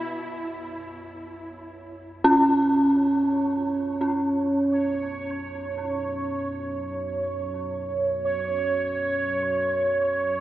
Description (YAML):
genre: dark ambient drone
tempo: free time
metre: none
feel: none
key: unclear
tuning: A4 = 440 Hz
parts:
  - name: deep rumbling drone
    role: drone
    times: 0.5-10.4 s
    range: B1 to F#2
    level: -38 LUFS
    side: equal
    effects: built-in reverb, wide subtle chorus
  - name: bubbling stepped-filter texture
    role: texture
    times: 0.0-10.4 s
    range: C#5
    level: -27 LUFS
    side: right 3 dB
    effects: chorus, built-in reverb
  - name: dark detuned synth bell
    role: arpeggios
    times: 2.2-10.4 s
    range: C#4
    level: -22 LUFS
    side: equal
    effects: chorus, tape echo
room: wet huge ambient reverb, RT60 7.9 s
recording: AM radio sound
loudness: -22 LUFS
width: side -14 dB against mid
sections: 0.0-10.4 A section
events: fade-in on synth texture 0.0-10.4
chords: 0.0 Bsus2